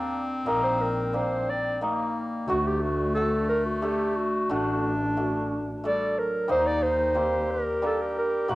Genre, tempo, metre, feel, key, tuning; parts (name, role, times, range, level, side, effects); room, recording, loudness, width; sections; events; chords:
klezmer; 90 BPM; 3/4; straight; A4 = 440 Hz
clear clarinet; second line; 0.0-8.6 s; F#3 to G4; -32 LUFS; left 2 dB
hammered dulcimer; accompaniment; 0.0-8.6 s; G3 to F#5; -30 LUFS; equal
breathy clarinet; melody; 0.5-8.6 s; D4 to D5; -26 LUFS; equal; cassette tape
warm double bass; bass; 0.5-8.6 s; A1 to Eb2; -33 LUFS; equal
light reverb; home recording on cassette; -24 LUFS; side -18 dB against mid
0.0-6.5 A section; 6.5-8.6 B section
speeding up 0.0-8.6
0.0 Eb; 2.5 D; 6.5 Eb